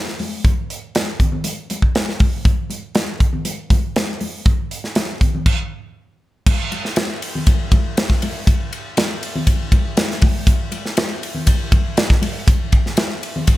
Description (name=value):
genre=pop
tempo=120 BPM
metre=4/4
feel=straight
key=none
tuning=none
part: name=modern studio drum kit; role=drums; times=0.1-13.6 s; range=crash cymbal, hi-hat, kick drum, ride cymbal, snare drum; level=-16 LUFS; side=equal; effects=none
part: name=congas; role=percussion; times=0.2-13.6 s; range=none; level=-27 LUFS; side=left 2 dB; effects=none
room=little or no reverb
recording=none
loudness=-16 LUFS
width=side -16 dB against mid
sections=0.0-6.5 A section; 6.5-13.6 B section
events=stop 5.5-6.5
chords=none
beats=| 0.45 0.95 1.45 1.95 | 2.45 2.96 3.46 3.96 | 4.46 4.96 5.46 5.97 | 6.47 6.97 7.47 7.97 | 8.47 8.97 9.47 9.97 | 10.47 10.98 11.48 11.98 | 12.48 12.98 13.48